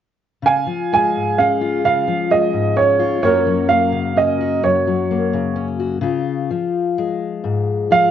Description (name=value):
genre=acoustic folk-pop ballad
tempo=43 BPM (dotted quarters)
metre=6/8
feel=straight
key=Db major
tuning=A4 = 440 Hz
part: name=fingerpicked steel-string acoustic guitar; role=accompaniment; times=0.4-8.1 s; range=Gb2 to Gb4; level=-19 LUFS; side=left 6 dB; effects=cassette tape
part: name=warm upright piano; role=melody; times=0.5-8.1 s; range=Bb4 to Ab5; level=-16 LUFS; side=right 5 dB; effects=cassette tape
room=moderate studio ambience, RT60 0.5 s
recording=home recording on cassette, nothing above 7.4 kHz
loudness=-15 LUFS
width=side -9 dB against mid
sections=0.4-6.0 A section; 6.0-8.1 B section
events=none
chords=0.4 Db; 3.2 Gb; 6.0 Db